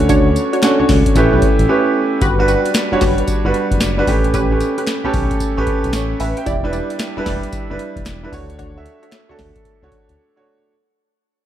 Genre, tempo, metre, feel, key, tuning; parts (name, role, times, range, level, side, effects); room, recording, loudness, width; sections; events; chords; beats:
R&B, new jack swing; 113 BPM; 4/4; swing 65% on 16ths; D major; A4 = 440 Hz
clear concert grand piano; accompaniment; 0.0-10.7 s; G3 to G5; -17 LUFS; right 2 dB; shimmer reverb
funky polysynth comp; stabs; 0.0-10.0 s; C#4 to D5; -22 LUFS; equal; chorus, phaser, digital delay, shimmer reverb
smooth synth bass; bass; 0.0-10.2 s; E1 to D2; -20 LUFS; equal
booming analog drum machine; drums; 0.0-10.2 s; hi-hat, kick drum, snare drum, tambourine; -19 LUFS; equal
group handclap; percussion; 0.6-9.3 s; -34 LUFS; left 5 dB
moderate plate reverb, RT60 2.1 s; dark, warm production; -14 LUFS; side -11 dB against mid
0.0-2.2 A section; 2.2-10.7 B section
break 1.7-2.2, 10.2-10.7; fade-out 2.2-10.7
0.0 Dmaj7; 1.2 A9; 2.2 Gmaj7; 4.1 A9; 6.5 Em7; 8.3 Dmaj7
| 0.09 0.62 1.16 1.69 | 2.22 2.75 3.28 3.81 | 4.34 4.87 5.40 5.93 | 6.46 7.00 7.53 8.06 | 8.59 9.12 9.65 10.18